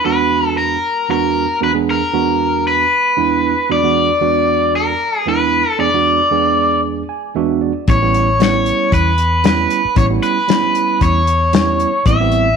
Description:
straight-eighth soul blues; 115 BPM; 4/4; straight; E mixolydian; A4 = 439 Hz
raw garage guitar; melody; 0.0-12.6 s; A#4 to E5; -15 LUFS; left 2 dB; overdrive
tine electric piano; accompaniment; 0.1-12.5 s; E2 to G#5; -18 LUFS; right 8 dB; overdrive
vintage muted fingered electric bass; bass; 7.9-12.6 s; A1 to E2; -17 LUFS; left 1 dB
warm soul drum kit; drums; 7.9-12.4 s; hi-hat, kick drum, snare drum; -17 LUFS; left 5 dB
light reverb, small room ambience; 1960s-style stereo; -12 LUFS; side -6 dB against mid
0.0-12.6 A section
tine electric piano fill 6.8-7.9
0.0 E9; 7.9 A9; 12.1 Am7

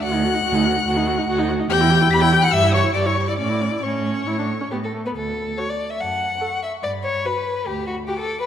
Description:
quick classical-period movement for string quartet; 144 BPM; 4/4; rubato; D major; A4 = 440 Hz
warm violin; melody; 0.0-8.5 s; A5 to B6; -26 LUFS; left 9 dB
rich violin; second line; 0.0-8.5 s; F#4 to B5; -23 LUFS; left 3 dB
warm viola; accompaniment; 0.0-8.2 s; A3 to A4; -25 LUFS; right 1 dB
warm cello; bass; 0.0-8.0 s; D2 to A2; -23 LUFS; right 3 dB
wet scoring stage reverb, RT60 1.8 s; -18 LUFS; side -9 dB against mid
0.0-5.2 A section; 5.2-8.5 B section
0.0 D; 1.7 Em; 2.5 Em/G; 3.4 A; 5.2 D5; 6.0 F#m; 6.8 Gmaj7

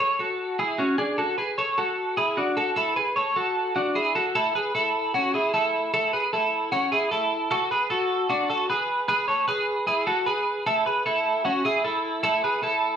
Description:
indie pop; 152 BPM; 4/4; straight; A major; A4 = 439 Hz
twelve-string electric guitar; solo; 0.0-13.0 s; C#4 to C#5; -22 LUFS; right 1 dB; vibrato effect
moderate studio reverb, RT60 0.6 s; studio reverb; -22 LUFS; side -8 dB against mid
0.0-4.4 A section; 4.4-13.0 B section
0.0 Amaj7; 1.0 D6; 4.4 Amaj7; 7.5 Bm7; 8.9 E (rootless); 10.7 Amaj7

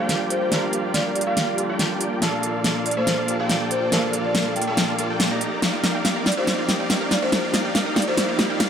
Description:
future bass; 141 BPM; 4/4; swing 53% on 16ths, half-time; A4 = 436 Hz
marimba with medium mallets; melody; 0.0-8.1 s; Bb4 to G5; -27 LUFS; equal; dub echo
overdriven tine electric piano; accompaniment; 0.0-5.4 s; Bb2 to Bb4; -28 LUFS; right 1 dB; auto-pan, dub echo
airy breathy pad; sustained chords; 0.0-8.7 s; F3 to D5; -34 LUFS; left 2 dB
supersaw chords; riff; 0.0-8.7 s; Bb3 to Bb5; -25 LUFS; right 1 dB; cassette tape, low-pass filter
riser; sound effects; 1.6-8.7 s; -36 LUFS; equal
big-room dance drum kit; drums; 0.1-8.7 s; hi-hat, snare drum; -22 LUFS; equal
wide unison pluck; arpeggios; 5.6-8.6 s; F4 to G5; -33 LUFS; right 4 dB; dub echo
moderate lush hall reverb, RT60 2.1 s; -19 LUFS; side -8 dB against mid
0.0-8.7 A section
build-up 0.0-8.7; drum fill 0.0-8.7; filter sweep on supersaw synth 0.0-8.7
0.0 Gm7; 2.2 Bbmaj7; 5.4 Ebmaj9

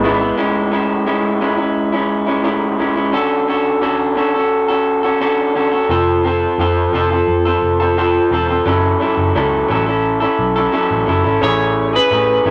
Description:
indie pop, bedroom pop; 87 BPM; 4/4; straight; A major; A4 = 440 Hz
electric guitar through a small old amp; accompaniment; 0.0-12.5 s; A2 to A4; -16 LUFS; equal; warbly pitch drift
vintage muted picked electric bass; bass; 0.0-0.3, 5.9-12.5 s; E1 to A2; -24 LUFS; equal
electric slide guitar; melody; 11.4-12.5 s; B4 to C#5; -17 LUFS; equal
moderate large studio reverb, RT60 1.2 s; -16 LUFS; mono
0.4-11.4 A section; 11.4-12.5 B section
0.4 Amaj7; 3.1 Dmaj7; 5.9 F; 8.7 F#m7; 11.4 Amaj7

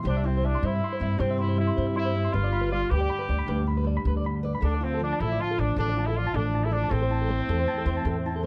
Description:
highlife; 105 BPM (dotted quarters); 12/8; straight; C major; A4 = 440 Hz
fingerpicked steel-string acoustic guitar; accompaniment; 0.0-8.5 s; G2 to B4; -36 LUFS; equal
clean electric guitar; arpeggios; 0.0-8.4 s; A4 to C6; -36 LUFS; equal; tremolo
upright bass; bass; 0.0-8.5 s; G1 to G2; -29 LUFS; equal
clear horn section; melody; 0.1-8.5 s; C4 to G4; -32 LUFS; equal
little or no reverb; dry, close 1970s-style studio recording; -26 LUFS; mono
0.0-8.5 A section
0.1 C; 2.3 G; 4.6 Dm; 6.9 Am

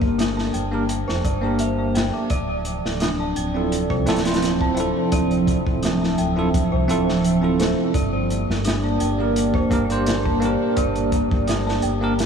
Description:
trip hop; 85 BPM; 4/4; swing 53% on 16ths; D minor; A4 = 440 Hz
bell-like tine electric piano; accompaniment; 0.0-12.1 s; Bb3 to C5; -24 LUFS; right 1 dB; tremolo, tape echo
dark detuned synth bell; arpeggios; 0.0-12.3 s; D4 to D6; -27 LUFS; equal; chorus, phaser, vintage 12-bit sampler grit, tape echo
round analog bass; bass; 0.0-12.3 s; D1 to C2; -26 LUFS; equal
crunchy breakbeat drum kit; drums; 0.0-12.3 s; hi-hat, kick drum, snare drum; -25 LUFS; equal
dark analog pad; sustained chords; 2.7-12.3 s; F3 to E5; -24 LUFS; right 2 dB; chorus, phaser, vintage 12-bit sampler grit
moderate huge ambient reverb, RT60 4.1 s; dreamy mix soaked in reverb, small room ambience; -18 LUFS; side -6 dB against mid
0.0-12.3 A section
0.0 Gm; 2.3 Dm7; 7.9 Gm

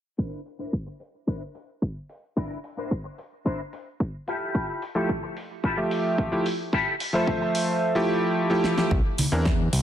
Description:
nu-disco, nu disco; 110 BPM; 4/4; straight; C mixolydian; A4 = 439 Hz
electric guitar with an envelope filter; riff; 0.2-7.6 s; D4 to D5; -31 LUFS; left 2 dB; ensemble chorus, low-pass filter, ping-pong delay
electronic kick drum; drums; 0.2-9.6 s; -27 LUFS; equal; high-pass filter on kick
pop drum kit; drums; 0.5-9.8 s; hi-hat, snare drum; -31 LUFS; equal
bright electric grand piano; accompaniment; 4.9-9.5 s; E3 to E5; -24 LUFS; right 1 dB; vintage 12-bit sampler grit, sidechain pumping, ping-pong delay
fat analog bass; bass; 8.9-9.8 s; C2 to E2; -23 LUFS; equal
congas; percussion; 9.2-9.3 s; -26 LUFS; equal
moderate plate reverb, RT60 1.3 s, digital ambience; dense, heavily limited modern master, low-pass filter; -24 LUFS; side -10 dB against mid
0.2-8.9 A section
filter sweep on clean electric guitar 0.2-8.9; filter sweep 0.2-8.9; drum fill 8.6
0.2 C9; 4.3 Fmaj9; 8.9 C9

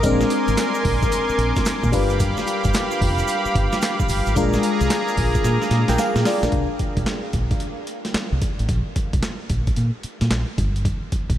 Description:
R&B, new jack swing; 111 BPM; 4/4; swing 65% on 16ths; A4 = 440 Hz
FM electric piano; accompaniment; 0.0-6.7 s; G3 to G5; -24 LUFS; left 2 dB; chorus, phaser
brassy analog pad; sustained chords; 0.0-6.5 s; G4 to D6; -24 LUFS; equal; chorus
deep dub fingered electric bass; bass; 0.0-11.4 s; F1 to Bb2; -22 LUFS; equal
breakbeat sampler-style drum kit; drums; 0.0-11.4 s; handclaps, hi-hat, kick drum, snare drum, tambourine; -23 LUFS; equal; overdrive
tube shaker; percussion; 0.0-6.5 s; -39 LUFS; right 7 dB
moderate huge ambient reverb, RT60 8.1 s; dreamy mix soaked in reverb; -18 LUFS; side -12 dB against mid
0.0-6.5 A section; 6.5-11.4 B section
drum fill 5.4-6.5
0.0 Bb9; 1.9 G7; 4.4 Bb7; 6.5 Abadd9 (rootless); 8.7 N.C.

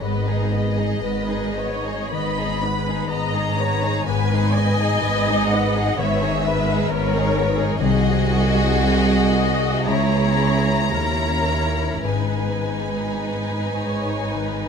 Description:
classical, slow romantic movement for symphony orchestra; 52-68 BPM; 4/4; rubato; G# minor; A4 = 440 Hz
warm studio violin section; melody; 0.0-14.7 s; C#5 to B5; -27 LUFS; left 4 dB
rich studio violin section; second line; 0.0-14.7 s; B3 to C#5; -27 LUFS; left 2 dB
rich studio viola section; accompaniment; 0.0-14.7 s; F#4 to D#5; -27 LUFS; left 1 dB
concert harp; arpeggios; 0.0-14.7 s; G#2 to D#5; -26 LUFS; left 9 dB
clear studio cello section; bass; 0.0-14.7 s; B#1 to G#2; -25 LUFS; right 3 dB
warm studio double bass section; bass; 0.0-14.7 s; G#1 to D#2; -24 LUFS; right 4 dB
moderate scoring stage reverb, RT60 1.8 s; -18 LUFS; side -6 dB against mid
0.0-14.7 A section
0.0 G#m; 7.8 G#7/B#; 9.9 C#m7; 10.9 D#7b9; 12.1 G#m

